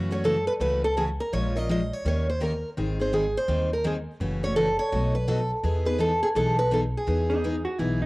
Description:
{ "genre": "acoustic string swing (jazz manouche)", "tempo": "167 BPM", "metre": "4/4", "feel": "swing 63% on 8ths", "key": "E major", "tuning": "A4 = 441 Hz", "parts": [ { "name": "picked steel-string acoustic guitar", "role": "accompaniment", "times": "0.0-8.0 s", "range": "B2 to A#4", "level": "-29 LUFS", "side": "left 1 dB", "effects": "cassette tape" }, { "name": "upright bass", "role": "bass", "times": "0.0-8.1 s", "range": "F#1 to F#2", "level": "-28 LUFS", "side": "equal", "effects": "none" }, { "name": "picked acoustic archtop guitar", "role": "melody", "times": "0.1-8.1 s", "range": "G#4 to D#5", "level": "-26 LUFS", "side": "right 1 dB", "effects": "cassette tape" }, { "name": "vintage hollow-body jazz guitar", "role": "second line", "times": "7.3-8.1 s", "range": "D#4 to F#4", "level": "-30 LUFS", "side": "right 2 dB", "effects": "cassette tape" } ], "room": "light reverb, small room ambience", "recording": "home recording on cassette", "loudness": "-23 LUFS", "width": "side -22 dB against mid", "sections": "0.0-8.1 A section", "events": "none", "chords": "0.0 F#m7; 1.3 A#m7; 2.0 D#7; 2.8 G#maj7; 4.2 F#m7; 4.9 B7; 5.6 Emaj7", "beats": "0.25 0.60 0.96 | 1.32 1.68 2.04 2.40 | 2.76 3.12 3.48 3.84 | 4.20 4.56 4.92 5.28 | 5.63 5.99 6.35 6.71 | 7.07 7.43 7.79" }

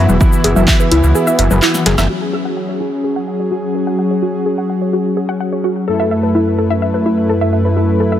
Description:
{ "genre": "melodic techno", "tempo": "127 BPM", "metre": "4/4", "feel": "straight", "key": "F# minor", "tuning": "A4 = 442 Hz", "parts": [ { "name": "warm analog pad", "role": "sustained chords", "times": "0.0-8.2 s", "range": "F#2 to B4", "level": "-19 LUFS", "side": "right 1 dB", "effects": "chorus, sidechain pumping" }, { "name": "warbly dusty pluck", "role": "arpeggios", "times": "0.0-8.2 s", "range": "E4 to F#5", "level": "-20 LUFS", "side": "equal", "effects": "chorus, sidechain pumping, digital delay" }, { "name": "analog synth brass", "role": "stabs", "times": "0.0-8.2 s", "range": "F#2 to A4", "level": "-18 LUFS", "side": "left 2 dB", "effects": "chorus, cassette tape, sidechain pumping, digital delay" }, { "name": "gritty driven synth bass", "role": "bass", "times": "0.0-2.1 s", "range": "E1 to C#2", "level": "-13 LUFS", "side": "equal", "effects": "sidechain pumping" }, { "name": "punchy analog drum machine", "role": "drums", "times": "0.1-2.1 s", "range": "congas, handclaps, hi-hat, shaker, snare drum", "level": "-17 LUFS", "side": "left 2 dB", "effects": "low-pass filter on perc, low-pass filter on hats, low-pass filter on snare, low-pass filter on room" }, { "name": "electronic kick drum", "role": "drums", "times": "0.2-0.8 s", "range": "none", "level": "-12 LUFS", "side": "equal", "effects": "none" } ], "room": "light reverb", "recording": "none", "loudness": "-12 LUFS", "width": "side -11 dB against mid", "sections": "0.0-2.1 A section; 2.1-8.2 B section", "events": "filter sweep on synth arpeggio sound 0.0-2.1; kick drops out 1.2-2.1; drum fill 1.7-2.1; band accent 2.0; filter sweep on analog polysynth 2.1-8.2", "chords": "0.0 E; 2.1 F#sus2; 5.9 Asus2/F#", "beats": "| 0.21 0.68 1.15 1.62 | 2.10 2.57 3.04 3.51 | 3.99 4.46 4.93 5.40 | 5.88 6.35 6.82 7.29 | 7.77" }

